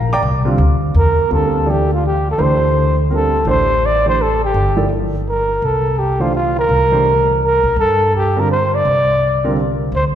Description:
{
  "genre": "modal jazz",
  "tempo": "167 BPM",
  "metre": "3/4",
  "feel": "swing 65% on 8ths",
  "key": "D minor",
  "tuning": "A4 = 440 Hz",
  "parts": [
    { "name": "warm baby grand piano", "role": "accompaniment", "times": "0.0-9.6 s", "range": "D3 to D6", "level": "-20 LUFS", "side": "right 2 dB", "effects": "none" },
    { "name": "upright bass", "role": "bass", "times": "0.0-10.2 s", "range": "G1 to G2", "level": "-18 LUFS", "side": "equal", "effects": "none" },
    { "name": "breathy trumpet", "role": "melody", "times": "1.0-10.1 s", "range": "F4 to D5", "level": "-15 LUFS", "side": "equal", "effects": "none" }
  ],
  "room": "wet concert hall reverb, RT60 1.8 s",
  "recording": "recorded in a church or concert hall",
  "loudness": "-13 LUFS",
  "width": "side -10 dB against mid",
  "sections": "0.0-1.3 A section; 1.3-10.2 B section",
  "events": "none",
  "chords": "0.0 C9sus4; 1.3 D9sus4; 5.6 C7(no3)",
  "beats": "| 0.23 0.58 0.94 | 1.30 1.66 2.02 | 2.38 2.74 3.10 | 3.46 3.82 4.18 | 4.54 4.90 5.26 | 5.62 5.97 6.33 | 6.69 7.05 7.41 | 7.77 8.13 8.49 | 8.85 9.21 9.57 | 9.93"
}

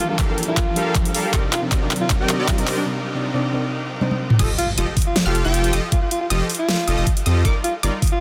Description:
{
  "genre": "future bass",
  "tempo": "157 BPM",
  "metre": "4/4",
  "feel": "half-time",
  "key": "unclear",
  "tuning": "A4 = 435 Hz",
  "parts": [
    { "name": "breathy alto saxophone", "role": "melody", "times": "0.0-8.2 s", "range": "D4 to Bb4", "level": "-29 LUFS", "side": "equal", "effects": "sidechain pumping, low-pass filter, dub echo" },
    { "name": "warm chamber string section", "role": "sustained chords", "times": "0.0-2.9 s", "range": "Eb3 to Bb4", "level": "-38 LUFS", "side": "equal", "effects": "none" },
    { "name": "dubstep drum kit", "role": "drums", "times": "0.0-8.2 s", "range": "crash cymbal, handclaps, hi-hat, snare drum, toms", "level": "-26 LUFS", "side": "equal", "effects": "overdrive" },
    { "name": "riser and impact", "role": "sound effects", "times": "0.0-5.9 s", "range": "none", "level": "-32 LUFS", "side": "equal", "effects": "none" },
    { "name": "soft round pluck", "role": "accompaniment", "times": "0.1-4.1 s", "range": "C3 to D5", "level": "-28 LUFS", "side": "equal", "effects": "chorus, sidechain pumping, dub echo" },
    { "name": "soft supersaw", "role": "riff", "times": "0.2-7.9 s", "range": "F3 to G5", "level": "-28 LUFS", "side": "equal", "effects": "sidechain pumping, dub echo" },
    { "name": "electronic kick drum", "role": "drums", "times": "0.2-8.1 s", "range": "none", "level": "-23 LUFS", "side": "equal", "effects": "overdrive" },
    { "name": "unison pluck", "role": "arpeggios", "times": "4.4-7.9 s", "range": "D6 to G6", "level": "-33 LUFS", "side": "equal", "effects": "sidechain pumping, dub echo" },
    { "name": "saturated sub bass", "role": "bass", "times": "4.4-7.9 s", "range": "F1 to F2", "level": "-23 LUFS", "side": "equal", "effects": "sidechain pumping" }
  ],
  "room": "light reverb",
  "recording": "dense, heavily limited modern master",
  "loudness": "-20 LUFS",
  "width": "mono",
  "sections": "0.0-4.4 A section; 4.4-8.2 B section",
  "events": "build-up 0.0-4.4; drum fill 0.0-2.9, 4.0-4.4; riser 0.0-2.9; filter sweep on alto saxophone 0.0-4.4; drop 4.4-8.2; impact 4.4-5.9",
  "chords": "0.0 Gm9; 1.3 Cm7; 4.4 F7; 7.5 Ebmaj7/G",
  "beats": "0.19 0.57 0.95 | 1.34 1.72 2.10 2.48 | 2.87 3.25 3.63 4.01 | 4.39 4.78 5.16 5.54 | 5.92 6.30 6.69 7.07 | 7.45 7.83"
}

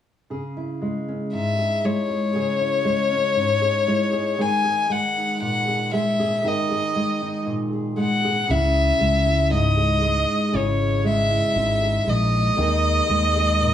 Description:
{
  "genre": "folk",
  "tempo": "59 BPM",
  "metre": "4/4",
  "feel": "straight",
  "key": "unclear",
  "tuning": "A4 = 440 Hz",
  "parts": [
    { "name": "nylon-string guitar", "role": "accompaniment", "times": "0.3-13.7 s", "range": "G#2 to G#4", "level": "-24 LUFS", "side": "equal", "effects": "none" },
    { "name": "rich violin", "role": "melody", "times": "1.3-13.7 s", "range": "C#5 to G#5", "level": "-21 LUFS", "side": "left 2 dB", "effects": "none" },
    { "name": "fingered electric bass", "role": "bass", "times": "8.5-13.7 s", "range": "G#1 to D#2", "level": "-22 LUFS", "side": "left 1 dB", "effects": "none" }
  ],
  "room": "moderate large studio reverb, RT60 1.2 s",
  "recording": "small room ambience",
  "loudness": "-19 LUFS",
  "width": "side -10 dB against mid",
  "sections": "0.3-8.5 A section; 8.5-13.7 B section",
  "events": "none",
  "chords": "0.3 C#m; 4.4 D#sus4; 8.5 C#m; 12.6 D#sus4",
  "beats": "| 0.30 1.32 2.35 3.37 | 4.39 5.41 6.43 7.46 | 8.48 9.51 10.53 11.56 | 12.58 13.60"
}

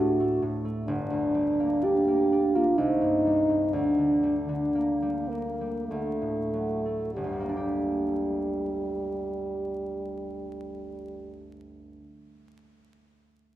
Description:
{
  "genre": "classical, romantic duo for French horn and harp",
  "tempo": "46-69 BPM",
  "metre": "3/4",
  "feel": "rubato",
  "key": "G minor",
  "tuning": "A4 = 440 Hz",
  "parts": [
    { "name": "mellow French horn", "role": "melody", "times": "0.0-11.6 s", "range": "G3 to G4", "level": "-27 LUFS", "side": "equal", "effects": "none" },
    { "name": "concert harp", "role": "accompaniment", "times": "0.0-12.3 s", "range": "G1 to G4", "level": "-30 LUFS", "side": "right 1 dB", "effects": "none" }
  ],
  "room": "moderate scoring stage reverb, RT60 1.7 s",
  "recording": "minimal, uncompressed stereo recording, vinyl crackle",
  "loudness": "-25 LUFS",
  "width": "side -13 dB against mid",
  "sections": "0.0-7.1 A section; 7.1-10.8 B section",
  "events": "slowing down 0.0-7.1",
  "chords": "0.0 D; 0.9 Gm; 2.8 Cm; 3.7 Gm/D; 5.9 D; 7.1 Gm",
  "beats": "| 0.88 1.85 2.78 | 3.73 4.75 5.88 | 7.13 8.36 9.59"
}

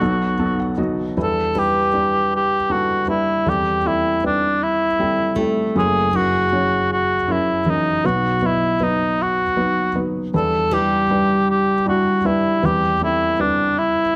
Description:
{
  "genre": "acoustic folk-pop ballad",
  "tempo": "52 BPM (dotted quarters)",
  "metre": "6/8",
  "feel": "straight",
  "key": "E minor",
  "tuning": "A4 = 440 Hz",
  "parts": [
    { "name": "mellow cor anglais", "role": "melody", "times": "0.0-14.2 s", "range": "D4 to A4", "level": "-21 LUFS", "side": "equal", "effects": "none" },
    { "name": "felt-muted upright piano", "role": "accompaniment", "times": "0.0-14.2 s", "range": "F#1 to A5", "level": "-24 LUFS", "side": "equal", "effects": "none" },
    { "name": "picked plugged-in steel-string acoustic guitar", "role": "arpeggios", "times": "1.6-13.0 s", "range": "G3 to B4", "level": "-27 LUFS", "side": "equal", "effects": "none" }
  ],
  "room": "light reverb",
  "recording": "close, detailed microphones",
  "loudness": "-19 LUFS",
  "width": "mono",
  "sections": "0.0-1.2 A section; 1.2-14.2 A section",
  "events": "none",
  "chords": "0.0 B7; 1.2 Em7; 3.5 C6/E; 5.8 F#7; 8.0 B; 10.3 Em7; 12.6 Cmaj7/E",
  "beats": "0.01 | 1.16 2.32 | 3.46 4.61 | 5.75 6.89 | 8.03 9.18 | 10.33 11.48 | 12.62 13.76"
}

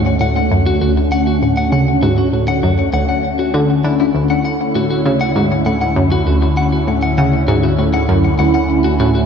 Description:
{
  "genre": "ambient, sequencer-driven space music",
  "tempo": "99 BPM",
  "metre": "4/4",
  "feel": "straight",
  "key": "unclear",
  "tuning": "A4 = 440 Hz",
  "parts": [
    { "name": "phased analog pad", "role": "sustained chords", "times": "0.0-9.3 s", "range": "D3 to F#4", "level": "-16 LUFS", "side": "equal", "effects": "phaser, chorus, shimmer reverb" },
    { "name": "analog pluck", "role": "riff", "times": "0.0-9.1 s", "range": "D2 to D3", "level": "-17 LUFS", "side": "equal", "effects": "chorus, ping-pong delay, shimmer reverb" },
    { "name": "round analog bass", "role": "bass", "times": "0.0-9.3 s", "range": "D2", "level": "-22 LUFS", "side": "right 1 dB", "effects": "none" },
    { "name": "clean electric guitar", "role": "arpeggios", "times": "0.2-9.2 s", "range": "E4 to F#5", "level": "-20 LUFS", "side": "left 3 dB", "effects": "auto-pan, ping-pong delay, shimmer reverb" }
  ],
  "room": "wet concert hall reverb, RT60 2.2 s",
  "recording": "dark, warm production",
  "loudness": "-12 LUFS",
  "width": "side -7 dB against mid",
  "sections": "0.0-9.3 A section",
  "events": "filter sweep on synth arpeggio sound 0.0-9.3",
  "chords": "0.0 Dmaj7",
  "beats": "0.51 1.12 | 1.72 2.33 2.94 3.54 | 4.15 4.75 5.36 5.97 | 6.57 7.18 7.78 8.39 | 9.00"
}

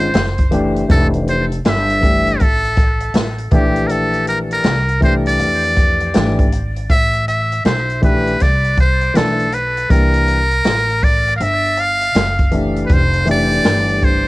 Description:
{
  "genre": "hip hop, jazz-hop",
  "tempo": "80 BPM",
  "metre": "4/4",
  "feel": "swing 65% on 16ths",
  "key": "unclear",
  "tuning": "A4 = 440 Hz",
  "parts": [
    { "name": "trumpet with metal mute", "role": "melody", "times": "0.0-14.3 s", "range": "G4 to F5", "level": "-17 LUFS", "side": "equal", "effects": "cassette tape, analog delay" },
    { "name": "dark baby grand piano", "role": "accompaniment", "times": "0.0-14.3 s", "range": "E3 to A4", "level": "-19 LUFS", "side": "left 2 dB", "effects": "cassette tape" },
    { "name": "upright bass", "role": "bass", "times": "0.0-14.3 s", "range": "F1 to F2", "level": "-20 LUFS", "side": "equal", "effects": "none" },
    { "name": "open jazz drum kit", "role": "drums", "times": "0.0-14.2 s", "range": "hi-hat, kick drum, snare drum", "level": "-16 LUFS", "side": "equal", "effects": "vintage 12-bit sampler grit, cassette tape" }
  ],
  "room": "light reverb",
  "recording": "home recording on cassette",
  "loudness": "-13 LUFS",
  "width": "side -20 dB against mid",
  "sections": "0.0-14.3 A section",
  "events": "none",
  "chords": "0.1 F#m7b5; 0.9 Fmaj9; 3.5 Bb69; 6.9 Amadd9; 9.9 C7; 12.1 Em11/F#; 12.9 Fmaj9",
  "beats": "0.15 | 0.90 1.65 2.40 3.15 | 3.90 4.65 5.40 6.15 | 6.90 7.65 8.40 9.15 | 9.90 10.65 11.40 12.15 | 12.90 13.65"
}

